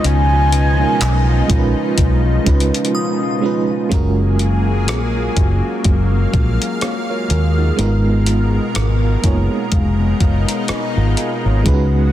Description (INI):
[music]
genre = contemporary R&B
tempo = 62 BPM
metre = 4/4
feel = swing 58% on 16ths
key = G# dorian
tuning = A4 = 440 Hz
[part]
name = mellow horn-like synth lead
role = melody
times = 0.0-2.0 s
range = G#5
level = -20 LUFS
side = equal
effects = chorus, tape echo
[part]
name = FM electric piano with tremolo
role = accompaniment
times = 0.0-12.1 s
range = G#3 to B5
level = -21 LUFS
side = right 6 dB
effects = none
[part]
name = lush unison pad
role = sustained chords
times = 0.0-12.1 s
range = B2 to E#5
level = -23 LUFS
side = equal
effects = chorus
[part]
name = clean electric guitar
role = arpeggios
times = 0.0-12.1 s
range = C#3 to B4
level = -24 LUFS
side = left 8 dB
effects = tape echo
[part]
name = vintage muted fingered electric bass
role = bass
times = 0.0-12.1 s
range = E#1 to D#2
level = -16 LUFS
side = equal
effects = none
[part]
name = clean 12-bit digital drum machine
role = drums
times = 0.0-11.9 s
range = handclaps, hi-hat, kick drum, rim click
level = -19 LUFS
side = equal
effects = none
[part]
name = glassy synth bell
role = texture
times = 2.9-4.4 s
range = D#6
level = -29 LUFS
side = left 2 dB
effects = chorus, phaser, tape echo
[sound]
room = digital ambience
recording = dense, heavily limited modern master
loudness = -14 LUFS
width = side -12 dB against mid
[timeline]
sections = 0.0-3.9 A section; 3.9-12.1 B section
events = break 2.9-3.9; FM electric piano fill 8.8-11.7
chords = 0.0 C#9; 3.9 F#maj9; 7.8 G#m69